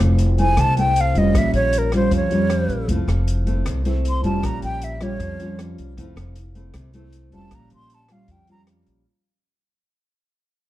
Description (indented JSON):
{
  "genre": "bossa nova",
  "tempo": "156 BPM",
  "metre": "4/4",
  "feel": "straight",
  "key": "unclear",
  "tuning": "A4 = 438 Hz",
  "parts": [
    { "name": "nylon-string guitar", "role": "accompaniment", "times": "0.0-9.0 s", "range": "Bb2 to F4", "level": "-24 LUFS", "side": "equal", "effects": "none" },
    { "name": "upright bass", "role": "bass", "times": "0.0-9.0 s", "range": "F1 to F2", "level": "-22 LUFS", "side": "equal", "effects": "none" },
    { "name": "open jazz drum kit", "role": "drums", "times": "0.2-9.0 s", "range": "hi-hat, kick drum, rim click", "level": "-28 LUFS", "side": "equal", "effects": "none" },
    { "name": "breathy concert flute", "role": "melody", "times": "0.4-8.6 s", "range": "Bb4 to C6", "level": "-22 LUFS", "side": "equal", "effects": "none" }
  ],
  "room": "light reverb",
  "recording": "dark, warm production",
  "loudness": "-17 LUFS",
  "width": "side -15 dB against mid",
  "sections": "0.0-9.1 A section",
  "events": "fade-out 0.0-9.1; flute solo 0.0-9.1",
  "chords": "0.0 Fmaj7; 1.4 Bbm6; 2.9 Fmaj7; 4.4 Bbm6; 6.0 Fmaj7; 7.5 Bbm6"
}